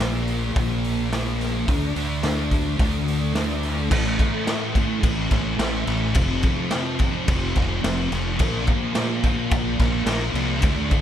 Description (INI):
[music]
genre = rock, shoegaze and dream pop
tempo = 107 BPM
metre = 4/4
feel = straight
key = unclear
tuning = A4 = 440 Hz
[part]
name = thick fuzz guitar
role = riff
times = 0.0-11.0 s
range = F2 to D4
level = -24 LUFS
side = equal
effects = distortion, ensemble chorus
[part]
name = fuzz fingered electric bass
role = bass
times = 0.0-10.9 s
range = F1 to D2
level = -26 LUFS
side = equal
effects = overdrive
[part]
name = raw garage drum kit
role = drums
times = 0.0-11.0 s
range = crash cymbal, hi-hat, kick drum, snare drum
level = -23 LUFS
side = equal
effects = none
[sound]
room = light reverb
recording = none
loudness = -20 LUFS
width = side -10 dB against mid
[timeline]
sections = 0.0-3.9 A section; 3.9-11.0 B section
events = none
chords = 0.0 Bb5; 1.7 D5; 3.9 A5; 6.2 F5; 8.4 Bb5